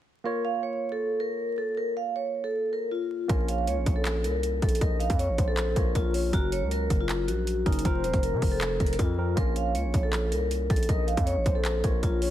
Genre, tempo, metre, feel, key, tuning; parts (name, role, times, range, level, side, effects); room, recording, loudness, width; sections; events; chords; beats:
hip hop, trap; 158 BPM; 4/4; half-time; Bb harmonic minor; A4 = 440 Hz
barky tine electric piano; accompaniment; 0.2-12.3 s; F3 to Db5; -36 LUFS; right 4 dB; low-pass filter
vibraphone with medium mallets; melody; 0.3-12.3 s; Eb4 to F5; -29 LUFS; equal; low-pass filter
distorted 808-style bass; bass; 3.3-12.3 s; Eb1 to C3; -29 LUFS; equal; distortion
trap drum kit; drums; 3.3-12.3 s; handclaps, hi-hat, kick drum; -27 LUFS; equal
soft octave-layered synth lead; second line; 3.5-12.3 s; Bb4 to Eb5; -36 LUFS; left 6 dB; chorus, tremolo, ping-pong delay
little or no reverb; dense, heavily limited modern master, vinyl crackle; -24 LUFS; side -12 dB against mid
0.3-3.3 A section; 3.3-12.3 B section
0.3 Bbm; 6.3 Gb; 7.9 Fsus4; 9.4 Bbm
| 0.26 0.64 1.02 1.40 | 1.77 2.15 2.54 2.91 | 3.29 3.67 4.05 4.43 | 4.81 5.19 5.57 5.95 | 6.33 6.71 7.09 7.47 | 7.85 8.23 8.61 8.99 | 9.37 9.75 10.13 10.51 | 10.89 11.27 11.65 12.03